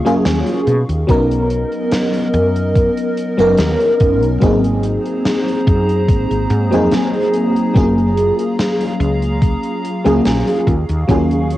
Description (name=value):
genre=vaporwave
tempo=72 BPM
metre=4/4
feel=straight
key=unclear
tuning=A4 = 440 Hz
part: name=FM electric piano with soft pad layer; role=accompaniment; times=0.0-11.6 s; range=F#3 to A#4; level=-15 LUFS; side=equal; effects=phaser, ensemble chorus, cassette tape, analog delay
part: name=warbly tape-like pad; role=sustained chords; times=0.0-11.6 s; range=G#4 to C#6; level=-25 LUFS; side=equal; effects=chorus, built-in reverb, phaser, vintage 12-bit sampler grit, cassette tape
part: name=woody fretless electric bass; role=bass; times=0.1-11.6 s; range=F#1 to B2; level=-18 LUFS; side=equal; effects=none
part: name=gated 80s drum kit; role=drums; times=0.1-11.6 s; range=hi-hat, snare drum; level=-22 LUFS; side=equal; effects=cassette tape
part: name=electronic kick drum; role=drums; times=1.1-11.3 s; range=none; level=-15 LUFS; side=equal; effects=cassette tape
room=light reverb, studio reverb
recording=home recording on cassette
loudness=-13 LUFS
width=side -15 dB against mid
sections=0.0-11.6 A section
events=none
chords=0.0 D#m11; 0.7 Bmaj7; 4.4 G#9; 7.8 F#maj9; 10.7 D#m11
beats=0.25 | 1.09 1.92 2.75 3.59 | 4.42 5.25 6.09 6.92 | 7.75 8.59 9.42 10.25 | 11.09